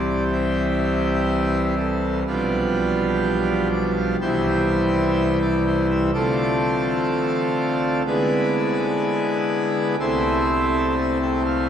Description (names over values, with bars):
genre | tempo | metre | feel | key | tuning
classical, chorale-style piece for pipe organ | 62 BPM | 4/4 | rubato | unclear | A4 = 439 Hz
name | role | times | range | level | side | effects
pipe organ, full organ | solo | 0.0-11.7 s | B1 to G5 | -19 LUFS | equal | none
room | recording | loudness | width
wet cathedral reverb, RT60 6.6 s | none | -19 LUFS | side -9 dB against mid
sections
0.0-11.7 A section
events
none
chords
0.0 C; 2.3 G7/B; 4.2 C; 6.1 Dm7; 8.1 E7/D; 10.0 Am/C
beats
0.32 1.29 | 2.27 3.24 4.20 5.17 | 6.14 7.10 8.06 9.03 | 9.99 10.97